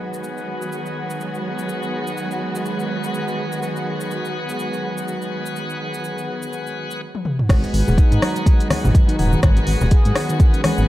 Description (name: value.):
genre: afro house.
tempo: 124 BPM.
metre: 4/4.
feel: swing 57% on 16ths.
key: G# minor pentatonic.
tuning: A4 = 439 Hz.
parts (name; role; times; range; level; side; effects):
rich studio string section; sustained chords; 0.0-10.9 s; D#3 to F#4; -27 LUFS; right 2 dB; sidechain pumping.
bright tonewheel organ; stabs; 0.0-10.9 s; B3 to F#5; -28 LUFS; left 3 dB; overdrive, slow rotary speaker, sidechain pumping, low-pass filter, tape echo.
deep house drum kit; drums; 0.1-10.9 s; crash cymbal, hi-hat, rim click, shaker, toms; -26 LUFS; equal; none.
handpan; arpeggios; 7.5-10.9 s; D#3 to G#4; -26 LUFS; right 1 dB; sidechain pumping, tape echo.
dark detuned saw bass; bass; 7.5-10.8 s; D#1 to G#2; -19 LUFS; equal; sidechain pumping.
electronic kick drum; drums; 7.5-10.5 s; none; -14 LUFS; equal; none.
congas; percussion; 7.5-10.8 s; none; -24 LUFS; left 1 dB; none.
room: light reverb.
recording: dark, warm production.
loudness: -18 LUFS.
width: side -15 dB against mid.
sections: 0.0-7.5 A section; 7.5-10.9 B section.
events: filter sweep on tonewheel organ 0.0-7.5; drum fill 7.1-7.5; drop 7.5-10.9.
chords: 0.0 G#m7.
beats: 0.24 0.72 1.21 | 1.69 2.17 2.66 3.14 | 3.63 4.11 4.59 5.08 | 5.56 6.04 6.53 7.01 | 7.50 7.98 8.46 8.95 | 9.43 9.92 10.40.